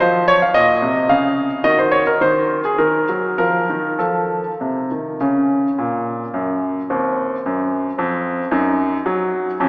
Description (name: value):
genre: classical, baroque-style suite movement for grand piano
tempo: 98-114 BPM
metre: 3/4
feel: rubato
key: Bb minor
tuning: A4 = 440 Hz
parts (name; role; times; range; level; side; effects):
- clear baby grand piano; solo; 0.0-9.7 s; Eb2 to F5; -15 LUFS; equal; none
room: wet church reverb, RT60 3.4 s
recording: recorded in a church or concert hall, small speaker sound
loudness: -15 LUFS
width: side -33 dB against mid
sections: 0.0-5.2 A section; 5.2-9.7 B section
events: none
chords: 0.0 F5; 1.1 N.C.; 1.6 Ebm; 3.4 F; 5.2 Bbm; 6.9 Cdim/Eb; 8.0 F5; 8.5 Ebm/Gb